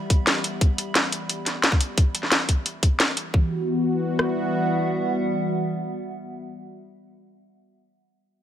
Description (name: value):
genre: dark technical drum and bass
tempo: 176 BPM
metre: 4/4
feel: straight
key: E minor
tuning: A4 = 440 Hz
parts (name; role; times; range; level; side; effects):
- sweeping resonant pad; sustained chords; 0.0-6.8 s; E3 to G4; -28 LUFS; equal; chorus, sidechain pumping
- warbly tape-like pad; texture; 0.0-6.8 s; G3 to B5; -30 LUFS; equal; chorus, built-in reverb, sidechain pumping
- drum and bass drum kit; drums; 0.1-4.3 s; kick drum, rim click; -19 LUFS; equal; none
- drum and bass drum kit; drums; 0.1-3.2 s; hi-hat, snare drum; -21 LUFS; equal; none
room: moderate lush hall reverb, RT60 1.8 s, digital ambience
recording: none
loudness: -21 LUFS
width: side -10 dB against mid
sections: 0.0-3.3 A section; 3.3-6.1 B section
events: fade-out on ambient pad 0.0-3.3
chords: 0.0 Em; 3.3 Emadd9